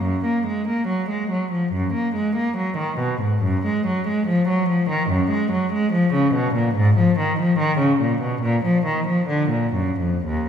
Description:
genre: classical, baroque-style suite movement for unaccompanied cello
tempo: 70 BPM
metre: 4/4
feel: uneven beats, rubato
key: F# major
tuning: A4 = 443 Hz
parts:
  - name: rich cello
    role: solo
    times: 0.0-10.5 s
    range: Eb2 to A#3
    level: -18 LUFS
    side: equal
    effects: none
room: wet scoring stage reverb, RT60 1.9 s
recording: recorded in a church or concert hall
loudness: -18 LUFS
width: side -8 dB against mid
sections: 0.0-10.5 A section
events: none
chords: none

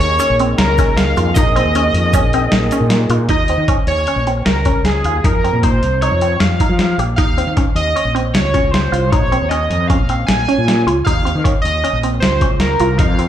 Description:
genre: progressive instrumental, band music in an uneven meter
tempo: 155 BPM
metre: 5/4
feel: straight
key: unclear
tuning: A4 = 439 Hz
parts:
  - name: octave-doubled lead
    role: melody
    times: 0.0-13.3 s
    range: Ab4 to Ab5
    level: -18 LUFS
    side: right 1 dB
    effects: chorus, slapback echo, ping-pong delay
  - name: tonewheel organ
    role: accompaniment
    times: 0.0-3.3 s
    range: Bb3 to Ab4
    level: -22 LUFS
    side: left 1 dB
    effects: slow rotary speaker, slapback echo
  - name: resonant blip pluck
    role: arpeggios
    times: 0.0-13.3 s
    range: C4 to G4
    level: -21 LUFS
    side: right 1 dB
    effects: phaser, slapback echo, ping-pong delay
  - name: fretless electric bass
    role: bass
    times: 0.0-13.2 s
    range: Bb1 to F3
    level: -17 LUFS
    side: equal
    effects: none
  - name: boom bap sampler-style drum kit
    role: drums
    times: 0.0-13.3 s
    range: hi-hat, kick drum, snare drum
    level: -17 LUFS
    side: equal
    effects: none
  - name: egg shaker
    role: percussion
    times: 0.2-2.9 s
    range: none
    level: -33 LUFS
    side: right 4 dB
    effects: none
room: light reverb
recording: live gig heard through the venue's PA, club reverb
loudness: -12 LUFS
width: side -10 dB against mid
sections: 0.0-3.3 A section; 3.3-13.3 B section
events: none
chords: 0.0 Bbm11; 3.3 Eb7sus4; 5.2 F5; 7.2 Bbmadd9

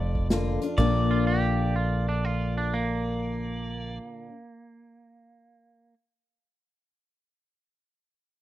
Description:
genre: honky-tonk and classic country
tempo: 123 BPM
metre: 4/4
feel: swing 66% on 8ths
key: Bb major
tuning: A4 = 440 Hz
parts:
  - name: pedal steel guitar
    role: melody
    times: 0.0-4.0 s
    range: D5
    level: -35 LUFS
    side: right 1 dB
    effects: none
  - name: picked steel-string acoustic guitar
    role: accompaniment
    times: 0.0-4.3 s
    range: F2 to F4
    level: -30 LUFS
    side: left 4 dB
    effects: none
  - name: mellow fretless electric bass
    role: bass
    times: 0.0-4.0 s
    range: F1 to Bb1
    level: -28 LUFS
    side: right 1 dB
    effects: none
  - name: unplugged drum kit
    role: drums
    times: 0.1-0.9 s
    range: crash cymbal, hi-hat, kick drum, snare drum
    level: -27 LUFS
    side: equal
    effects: none
  - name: twangy electric guitar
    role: second line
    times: 1.1-5.9 s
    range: Bb3 to G4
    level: -33 LUFS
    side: right 3 dB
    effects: tape echo
room: small room ambience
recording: dry, close 1970s-style studio recording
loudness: -24 LUFS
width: side -14 dB against mid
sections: 0.8-4.7 A section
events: none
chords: 0.0 Bb

